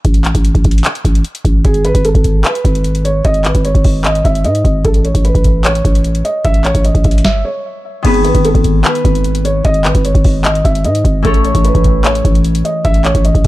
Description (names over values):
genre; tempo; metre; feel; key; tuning
hip hop, trap; 150 BPM; 4/4; half-time; G# phrygian; A4 = 440 Hz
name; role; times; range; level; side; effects
growling 808-style bass; bass; 0.0-13.5 s; G#1 to G#2; -14 LUFS; equal; none
booming analog drum machine; drums; 0.0-13.5 s; crash cymbal, handclaps, hi-hat, kick drum, snare drum; -13 LUFS; equal; none
felt-muted upright piano; melody; 1.6-13.5 s; G#4 to E5; -17 LUFS; right 1 dB; ping-pong delay
Celtic harp; accompaniment; 8.0-13.5 s; D#3 to C#5; -19 LUFS; left 5 dB; none
room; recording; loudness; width
little or no reverb; dark, warm production; -10 LUFS; side -17 dB against mid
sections
0.0-8.0 A section; 8.0-13.5 B section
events
break 0.0-1.6; stop 7.2-8.0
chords
0.0 N.C.; 1.6 G#m; 4.8 A; 8.0 G#m; 11.2 A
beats
| 0.05 0.45 0.85 1.25 | 1.65 2.05 2.45 2.85 | 3.25 3.65 4.05 4.45 | 4.85 5.25 5.65 6.05 | 6.45 6.85 7.25 7.65 | 8.05 8.45 8.85 9.25 | 9.65 10.05 10.45 10.85 | 11.25 11.65 12.05 12.45 | 12.85 13.25